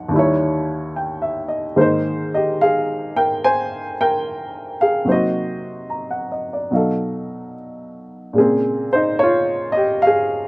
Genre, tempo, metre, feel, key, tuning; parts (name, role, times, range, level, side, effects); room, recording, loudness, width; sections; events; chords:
jazz ballad; 73 BPM; 4/4; swing 66% on 8ths; Ab major; A4 = 440 Hz
warm upright piano; solo; 0.0-10.5 s; Eb2 to Bb5; -17 LUFS; equal
light reverb; recorded outdoors, with no room sound; -17 LUFS; side -26 dB against mid
0.0-1.8 A section; 1.8-10.5 B section
0.1 Eb7b9; 1.8 Abmaj9; 5.1 Cm7b5; 6.7 B7#11; 8.4 Bbm9